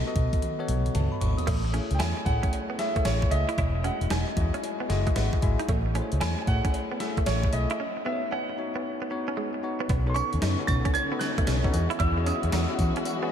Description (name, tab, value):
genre	R&B, new jack swing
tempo	114 BPM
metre	4/4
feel	swing 65% on 16ths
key	unclear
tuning	A4 = 445 Hz
part	bell-like tine electric piano	accompaniment	0.0-13.3 s	G#3 to D#6	-32 LUFS	left 3 dB	none
part	vintage muted fingered electric bass	bass	0.2-12.9 s	E1 to E3	-27 LUFS	equal	none
part	gated 80s digital drum machine	drums	0.2-13.2 s	crash cymbal, hi-hat, kick drum, snare drum, tambourine, toms	-29 LUFS	equal	gated reverb, gated reverb snare, overdrive
part	direct-recorded clean electric guitar	riff	1.5-13.3 s	G#3 to E4	-34 LUFS	right 4 dB	wide subtle chorus
part	cowbell	percussion	1.5-13.2 s	none	-46 LUFS	right 3 dB	none
part	clear baby grand piano	melody	1.9-13.3 s	C#5 to A6	-32 LUFS	right 2 dB	wide subtle chorus, diffuse ambient delay
part	dark studio string section	sustained chords	9.9-13.3 s	C#3 to F#4	-34 LUFS	equal	none
room	moderate cathedral reverb, RT60 6.0 s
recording	dreamy mix soaked in reverb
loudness	-24 LUFS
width	side -9 dB against mid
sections	0.0-1.5 A section; 1.5-9.9 B section; 9.9-13.3 C section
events	drum fill 0.4-1.5; tine electric piano fill 4.6-5.7; break 7.8-9.9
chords	0.0 B7; 1.5 Amaj7; 3.6 Emaj9; 5.7 Amaj7; 7.8 C#9sus4; 9.9 B9; 11.7 Emaj9